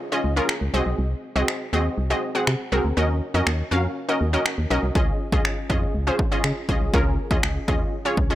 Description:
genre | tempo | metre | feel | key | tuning
dance-pop | 121 BPM | 4/4 | straight | Db major | A4 = 440 Hz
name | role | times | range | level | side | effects
wide unison pluck | accompaniment | 0.0-8.3 s | C4 to Gb5 | -24 LUFS | equal | sidechain pumping
downlifter | sound effects | 0.0-1.0 s | none | -43 LUFS | equal | none
organ-like FM bass | bass | 0.2-8.3 s | Cb2 to Db3 | -24 LUFS | equal | sidechain pumping
punchy analog drum machine | drums | 0.5-8.3 s | finger snaps, kick drum | -24 LUFS | equal | none
room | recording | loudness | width
digital ambience | dry, gritty hardware recording | -20 LUFS | side -14 dB against mid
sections
0.0-8.3 A section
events
none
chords
0.0 Dbadd9; 0.7 Ab7; 3.0 Ebm7; 5.0 Dbadd9

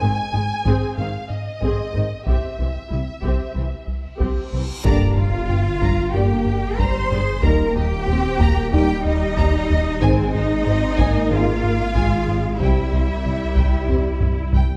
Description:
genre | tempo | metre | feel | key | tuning
cinematic, hybrid orchestral and electronic film score | 93 BPM | 4/4 | straight | G phrygian | A4 = 439 Hz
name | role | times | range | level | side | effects
warm symphonic violin section | melody | 0.0-14.8 s | C5 to Bb5 | -33 LUFS | equal | none
warm symphonic viola section | accompaniment | 0.0-14.8 s | Eb3 to Ab4 | -30 LUFS | equal | none
rubbery square bass | riff | 0.0-14.7 s | C2 to Ab2 | -26 LUFS | equal | none
rich symphonic double bass section | bass | 0.0-14.6 s | Ab1 to G2 | -28 LUFS | equal | none
warm symphonic cello section | bass | 0.0-14.5 s | Ab2 to C5 | -28 LUFS | equal | none
solo taiko drums | drums | 0.7-14.8 s | none | -28 LUFS | equal | none
reverse cymbal and impact | sound effects | 4.6-7.4 s | none | -31 LUFS | equal | none
dark trombone section | sustained chords | 4.8-14.1 s | C3 to Ab3 | -30 LUFS | equal | none
mellow French horn section | sustained chords | 4.8-14.1 s | Bb3 to G4 | -31 LUFS | equal | none
warm symphonic violin section | second line | 4.9-14.5 s | C5 to C6 | -32 LUFS | equal | none
dark detuned saw bass | bass | 4.9-14.8 s | Eb1 to C2 | -28 LUFS | equal | none
room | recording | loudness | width
moderate scoring stage reverb, RT60 1.9 s | none | -20 LUFS | mono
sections
0.0-4.9 A section; 4.9-14.8 A section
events
reverse cymbal 4.6; band accent 4.9-5.5; impact 4.9-7.4; drum fill 14.2-14.8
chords
0.0 Ab; 2.3 C; 4.9 Gm; 7.4 Eb; 10.0 Ab; 12.6 C

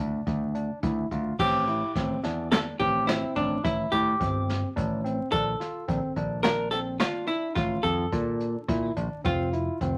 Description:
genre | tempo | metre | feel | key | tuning
progressive instrumental, band music in an uneven meter | 107 BPM | 7/4 | straight | unclear | A4 = 440 Hz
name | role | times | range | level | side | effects
archtop guitar, miked and amplified | melody | 0.0-10.0 s | D4 to Bb4 | -30 LUFS | equal | none
barky tine electric piano | arpeggios | 0.0-10.0 s | C4 to F4 | -36 LUFS | equal | none
picked electric bass | bass | 0.0-10.0 s | F1 to Bb2 | -32 LUFS | equal | none
jazz brush drum kit | drums | 0.3-9.9 s | crash cymbal, hi-hat, kick drum, snare drum | -34 LUFS | equal | none
room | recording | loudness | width
moderate studio reverb, RT60 0.5 s | vinyl crackle | -27 LUFS | mono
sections
0.0-1.4 A section; 1.4-10.0 B section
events
none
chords
0.0 Dm; 1.4 Am7; 5.3 Bbmaj7; 9.2 Fmaj7(no3)

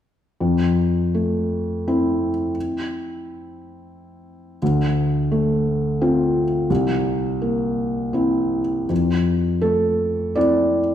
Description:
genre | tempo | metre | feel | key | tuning
neoclassical minimalist piano | 77-89 BPM | 3/4 | rubato | unclear | A4 = 440 Hz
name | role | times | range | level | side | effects
felt-muted upright piano | solo | 0.4-10.9 s | C2 to D5 | -18 LUFS | equal | none
room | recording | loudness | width
wet recital hall reverb, RT60 1.5 s | recorded in a church or concert hall | -18 LUFS | side -10 dB against mid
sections
0.4-8.9 A section; 8.9-10.9 B section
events
none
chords
0.4 Fmaj7; 4.6 Dm7; 6.7 C7; 8.9 Fmaj7

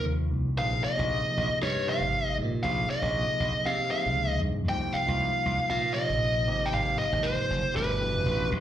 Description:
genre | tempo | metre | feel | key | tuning
jazz | 117 BPM | 4/4 | straight | unclear | A4 = 440 Hz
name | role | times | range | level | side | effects
biting lead guitar | melody | 0.0-8.5 s | B4 to G5 | -28 LUFS | equal | overdrive, slapback echo
overdriven tine electric piano | accompaniment | 0.0-8.6 s | B2 to Ab4 | -33 LUFS | equal | wide subtle chorus
glassy slap bass | bass | 0.0-8.6 s | F1 to C3 | -30 LUFS | equal | none
room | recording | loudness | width
light reverb | live gig heard through the venue's PA, club reverb | -25 LUFS | side -11 dB against mid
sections
0.0-8.6 A section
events
none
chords
0.0 F7(no3); 0.6 Bbsus2; 2.6 Eb9sus4/Bb; 4.7 Cm7; 6.5 Ab6; 7.8 G7

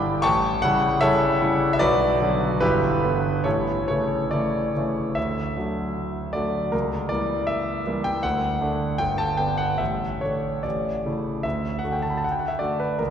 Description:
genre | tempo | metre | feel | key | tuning
classical, romantic character piece for solo piano | 68-80 BPM | 2/4 | rubato | D major | A4 = 440 Hz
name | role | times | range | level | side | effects
clear concert grand piano | solo | 0.0-13.1 s | G1 to D6 | -21 LUFS | equal | none
room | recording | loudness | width
wet church reverb, RT60 3.3 s | dark, warm production | -21 LUFS | side -8 dB against mid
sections
0.0-5.2 A section; 5.2-13.1 B section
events
none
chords
0.2 A7; 1.8 Bm; 2.6 Em7/G; 3.4 A; 5.2 D; 6.7 C#dim7; 8.2 D; 9.0 G; 9.8 Asus4; 11.4 D

